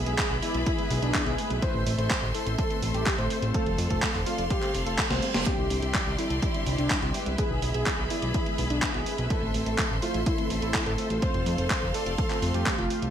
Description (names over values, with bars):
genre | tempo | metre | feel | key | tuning
italo disco | 125 BPM | 4/4 | straight | unclear | A4 = 441 Hz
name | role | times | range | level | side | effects
clear studio string section | sustained chords | 0.0-13.1 s | G4 to C6 | -34 LUFS | equal | shimmer reverb
mellow synth brass | stabs | 0.0-13.1 s | G3 to D5 | -35 LUFS | left 1 dB | chorus, shimmer reverb
fat analog bass | bass | 0.0-13.1 s | F1 to F2 | -30 LUFS | equal | none
wide unison lead | melody | 0.1-13.1 s | D4 to C5 | -32 LUFS | equal | digital delay, shimmer reverb
gated 80s digital drum machine | drums | 0.1-13.1 s | handclaps, hi-hat, snare drum | -31 LUFS | right 1 dB | gated reverb, gated reverb snare
electronic kick drum | drums | 0.2-12.8 s | none | -30 LUFS | equal | overdrive
reverse cymbal | sound effects | 4.7-5.5 s | none | -36 LUFS | right 6 dB | none
room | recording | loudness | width
moderate plate reverb, RT60 1.0 s | bright 1980s-style digital production, vinyl crackle | -24 LUFS | side -9 dB against mid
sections
0.0-13.1 A section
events
reverse cymbal 4.7-5.5; drum fill 5.1-5.5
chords
0.0 E/B; 1.6 Am; 3.5 F; 5.5 Cadd9; 7.4 E/B; 9.3 Am; 11.2 F